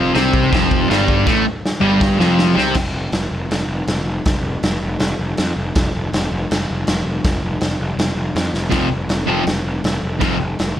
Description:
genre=garage rock duo or trio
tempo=160 BPM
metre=4/4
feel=straight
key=unclear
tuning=A4 = 440 Hz
part: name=fuzz guitar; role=riff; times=0.0-2.7, 8.7-10.4 s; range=F2 to C4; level=-15 LUFS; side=equal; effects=distortion
part: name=fuzz picked electric bass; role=bass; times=0.0-10.8 s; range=F1 to F2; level=-22 LUFS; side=equal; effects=overdrive, tube saturation
part: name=raw garage drum kit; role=drums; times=0.2-10.7 s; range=crash cymbal, kick drum, snare drum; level=-20 LUFS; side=equal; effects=none
room=studio reverb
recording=none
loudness=-16 LUFS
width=side -11 dB against mid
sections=0.0-2.8 A section; 2.8-10.8 B section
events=drum fill 1.3-2.8, 8.6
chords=0.0 F; 2.8 F5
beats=0.13 0.51 0.88 | 1.25 1.63 2.00 2.38 | 2.75 3.13 3.50 3.88 | 4.25 4.63 5.00 5.38 | 5.75 6.13 6.50 6.87 | 7.25 7.62 7.99 8.36 | 8.74 9.11 9.48 9.85 | 10.22 10.59

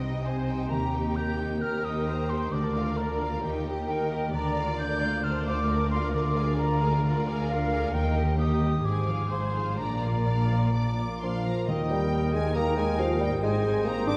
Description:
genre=classical, dramatic, fast romantic movement for symphony orchestra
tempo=124-142 BPM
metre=4/4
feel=rubato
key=Eb major from 4.3 s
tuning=A4 = 440 Hz
part: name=clear symphonic violin section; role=melody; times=0.0-14.2 s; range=D5 to D6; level=-44 LUFS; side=equal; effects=none
part: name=warm symphonic violin section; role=second line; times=0.0-14.2 s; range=C4 to D6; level=-39 LUFS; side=equal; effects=none
part: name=clear symphonic viola section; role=accompaniment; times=0.0-14.2 s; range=Eb4 to Eb5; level=-38 LUFS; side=equal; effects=none
part: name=concert harp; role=arpeggios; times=0.0-14.2 s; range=Ab2 to C5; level=-36 LUFS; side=equal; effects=none
part: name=rich symphonic cello section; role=bass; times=0.0-14.2 s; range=D2 to C3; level=-34 LUFS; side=equal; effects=none
part: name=rich symphonic double bass section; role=bass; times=0.0-14.2 s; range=Ab1 to Eb2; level=-34 LUFS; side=equal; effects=none
part: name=concert flute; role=second line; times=0.2-14.2 s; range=F5 to G6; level=-36 LUFS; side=equal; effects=none
part: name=mellow bassoon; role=accompaniment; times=11.2-14.2 s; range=Eb3 to D4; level=-32 LUFS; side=equal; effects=none
part: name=dark French horn section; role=sustained chords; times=11.2-14.2 s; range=Eb3 to D4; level=-35 LUFS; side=equal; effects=none
part: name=dark clarinet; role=second line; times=11.7-14.2 s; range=Bb4 to C5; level=-38 LUFS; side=equal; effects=none
part: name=warm oboe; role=second line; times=11.7-14.2 s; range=Eb5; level=-40 LUFS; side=equal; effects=none
part: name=timpani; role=percussion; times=11.7-12.3 s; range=Eb3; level=-38 LUFS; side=equal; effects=none
room=wet concert hall reverb, RT60 2.3 s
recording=dark, warm production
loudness=-27 LUFS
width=mono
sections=0.0-11.7 A section; 11.7-14.2 B section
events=none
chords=0.0 Cm; 0.7 Eb; 2.5 Bb/D; 3.4 Eb; 4.3 Bb/D; 6.1 Bb7/D; 7.9 Eb; 8.8 Fm/Ab; 9.8 Bb; 11.7 Eb; 13.4 Abmaj7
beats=0.25 | 0.70 1.16 1.62 2.08 | 2.53 2.99 3.44 3.89 | 4.34 4.79 5.24 5.68 | 6.13 6.58 7.03 7.48 | 7.94 8.39 8.84 9.31 | 9.79 10.27 10.74 11.22 | 11.69 12.12 12.55 12.99 | 13.43 13.86

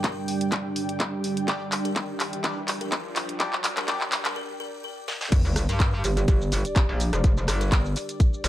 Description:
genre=bass house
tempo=125 BPM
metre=4/4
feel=swing 54% on 16ths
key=G minor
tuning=A4 = 440 Hz
part: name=buzzing kalimba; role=melody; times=0.0-7.8 s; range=G4 to Bb4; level=-36 LUFS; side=right 1 dB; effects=digital delay
part: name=dark analog pad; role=sustained chords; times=0.0-8.5 s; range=G3 to G5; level=-32 LUFS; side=right 2 dB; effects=chorus, sidechain pumping
part: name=electronic kick drum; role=drums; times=0.0-8.3 s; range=none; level=-21 LUFS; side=equal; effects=high-pass filter on kick, small room ambience
part: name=garage drum kit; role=drums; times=0.0-8.5 s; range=crash cymbal, handclaps, hi-hat, rim click, shaker, snare drum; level=-28 LUFS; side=equal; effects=high-pass filter on hats, small room ambience, high-pass filter on snare, high-pass filter on cymbals, high-pass filter on perc
part: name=riser and sub drop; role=sound effects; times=1.3-7.2 s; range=none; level=-36 LUFS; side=equal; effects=none
part: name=granular cloud pad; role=texture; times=0.0-4.4 s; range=D4 to G5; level=-37 LUFS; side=left 1 dB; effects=built-in reverb, sidechain pumping
part: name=band-passed chord stab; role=stabs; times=1.5-4.0 s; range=G3 to D5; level=-33 LUFS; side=left 2 dB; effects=phaser, sidechain pumping, digital delay
part: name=metallic wobble bass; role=bass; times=5.3-8.5 s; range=F1 to G2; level=-25 LUFS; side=equal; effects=chorus, overdrive, sidechain pumping
room=light reverb, digital ambience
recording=dark, warm production, high-pass filter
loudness=-23 LUFS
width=side -14 dB against mid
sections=0.0-5.3 A section; 5.3-8.5 B section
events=build-up 0.0-5.3; drum fill 0.0-4.4, 5.1; filter sweep 0.0-5.3; riser 1.3-4.4; break 4.4-5.3; drop 5.3-8.5; impact 5.3-7.2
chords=0.0 G5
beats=0.04 0.52 1.00 | 1.48 1.96 2.44 2.92 | 3.40 3.88 4.36 4.84 | 5.32 5.80 6.28 6.76 | 7.24 7.72 8.20

